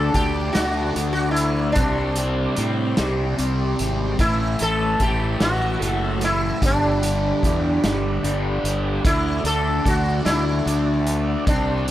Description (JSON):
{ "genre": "psychedelic rock", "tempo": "50 BPM (dotted quarters)", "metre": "6/8", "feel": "straight", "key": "unclear", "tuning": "A4 = 439 Hz", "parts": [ { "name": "sitar", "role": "melody", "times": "0.0-11.9 s", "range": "D4 to A4", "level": "-24 LUFS", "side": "equal", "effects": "analog delay" }, { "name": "tonewheel organ", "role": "sustained chords", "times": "0.0-11.9 s", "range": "D5 to E6", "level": "-35 LUFS", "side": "right 4 dB", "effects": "slow rotary speaker, chorus vibrato" }, { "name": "fuzz guitar", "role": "riff", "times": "0.0-11.9 s", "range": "G2 to D4", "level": "-24 LUFS", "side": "left 1 dB", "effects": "distortion, phaser" }, { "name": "fuzz fingered electric bass", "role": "bass", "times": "0.0-11.9 s", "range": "F#1 to A2", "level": "-24 LUFS", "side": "equal", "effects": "overdrive" }, { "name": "vintage drum kit", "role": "drums", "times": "0.1-11.9 s", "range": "hi-hat, kick drum, snare drum", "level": "-24 LUFS", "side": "equal", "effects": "none" } ], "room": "light reverb, small room ambience", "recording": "none", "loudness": "-18 LUFS", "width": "side -13 dB against mid", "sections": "0.0-11.9 A section", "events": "none", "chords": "0.0 D; 1.8 Csus2; 4.2 Asus2; 6.6 Gmaj7; 9.0 D" }